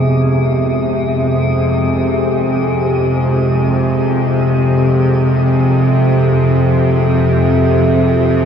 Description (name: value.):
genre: dark ambient drone.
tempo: free time.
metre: none.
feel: none.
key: F minor.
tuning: A4 = 440 Hz.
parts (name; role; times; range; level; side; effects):
carillon bells; arpeggios; 0.0-2.9 s; Ab3 to Eb4; -30 LUFS; right 1 dB; none.
bowed-like drone; drone; 0.0-8.5 s; F2 to C3; -12 LUFS; equal; built-in reverb.
metallic inharmonic drone; texture; 0.0-8.5 s; Ab3 to Ab4; -21 LUFS; equal; chorus, built-in reverb.
dark analog pad; sustained chords; 7.4-8.5 s; F4 to Gb4; -28 LUFS; right 1 dB; none.
room: wet cathedral reverb, RT60 4.9 s.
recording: none.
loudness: -11 LUFS.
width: side -7 dB against mid.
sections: 0.0-8.5 A section.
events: none.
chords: 0.0 Fm; 7.4 Gbsus2/F.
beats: free time.